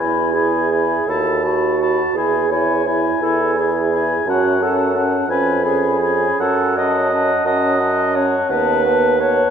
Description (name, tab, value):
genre	classical, slow romantic movement for wind quintet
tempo	57 BPM (dotted quarters)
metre	6/8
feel	uneven beats, rubato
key	E major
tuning	A4 = 440 Hz
part	mellow hollow silver concert flute	melody	0.0-9.5 s	A5 to B5	-24 LUFS	left 8 dB	none
part	mellow oboe	second line	0.0-9.5 s	F#5 to A5	-22 LUFS	left 2 dB	none
part	mellow clarinet	accompaniment	0.0-9.5 s	E4 to D#5	-20 LUFS	right 5 dB	none
part	warm French horn	accompaniment	0.0-9.5 s	B3 to F#4	-24 LUFS	equal	none
part	warm bassoon	bass	0.0-9.4 s	D#2 to F#2	-20 LUFS	right 2 dB	none
room	wet concert hall reverb, RT60 2.5 s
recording	none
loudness	-15 LUFS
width	side -8 dB against mid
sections	0.0-9.5 A section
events	none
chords	0.0 E; 1.1 B7/D#; 2.2 E; 4.3 F#m; 5.3 C#7/E#; 6.4 F#m; 8.5 B7/D#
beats	1.08 | 2.16 3.22 | 4.28 5.30 | 6.41 7.46 | 8.50